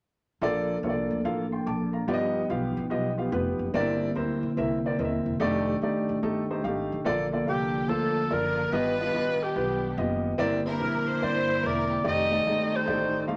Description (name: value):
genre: uptempo gospel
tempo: 144 BPM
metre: 4/4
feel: swing 66% on 8ths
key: Bb major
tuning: A4 = 440 Hz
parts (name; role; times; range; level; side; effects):
- warm upright piano; accompaniment; 0.4-13.4 s; G2 to D6; -31 LUFS; equal; none
- mellow tonewheel organ; sustained chords; 0.4-13.4 s; D3 to A4; -34 LUFS; equal; chorus vibrato, stopped rotary speaker
- upright bass; bass; 0.4-13.4 s; Eb1 to G2; -38 LUFS; equal; none
- breathy tenor saxophone; melody; 7.5-13.3 s; G4 to Eb5; -30 LUFS; equal; none
- dark symphonic string section; melody; 7.5-13.3 s; B3 to C5; -37 LUFS; equal; none
room: moderate studio reverb, RT60 0.8 s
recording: none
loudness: -27 LUFS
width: mono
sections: 0.4-7.1 A section; 7.1-13.4 B section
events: none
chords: 0.4 Bbmaj7; 2.1 G7b13; 3.7 C9/G; 5.4 F13; 7.1 Bbmaj7; 8.7 G7b13; 10.4 C9/G; 12.0 F13